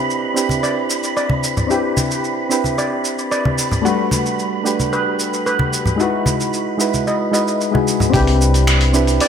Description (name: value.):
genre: sunset chillout.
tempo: 112 BPM.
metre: 4/4.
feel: straight.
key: unclear.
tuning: A4 = 439 Hz.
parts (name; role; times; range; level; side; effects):
soft electric-piano-like synth keys; accompaniment; 0.0-9.3 s; G3 to B4; -19 LUFS; moving between left 7 dB and right 5 dB; chorus, auto-pan, ping-pong delay.
wind-like tuned noise texture; texture; 0.0-8.2 s; B5; -27 LUFS; right 5 dB; built-in reverb, lush chorus.
dusty soul sampler-style drum kit; drums; 0.1-9.3 s; finger snaps, hi-hat, shaker; -23 LUFS; right 1 dB; gated reverb.
congas; percussion; 0.5-8.1 s; none; -21 LUFS; equal; none.
steel pan; arpeggios; 0.6-9.3 s; F#4 to D#5; -24 LUFS; equal; ping-pong delay.
hollow-body short-scale fingered electric bass; bass; 8.1-9.2 s; C2; -15 LUFS; equal; none.
electronic kick drum; drums; 8.1-8.2 s; none; -19 LUFS; equal; none.
room: moderate plate reverb, RT60 2.8 s.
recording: bright 1980s-style digital production.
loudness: -15 LUFS.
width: side -8 dB against mid.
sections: 0.0-8.1 A section; 8.1-9.3 B section.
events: none.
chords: 0.0 Cmaj9; 3.9 Gmaj9; 6.0 Emaj9; 8.1 Cmaj9.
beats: 0.10 0.64 1.18 | 1.71 2.25 2.78 3.32 | 3.85 4.39 4.92 5.46 | 6.00 6.53 7.07 7.60 | 8.14 8.68 9.21.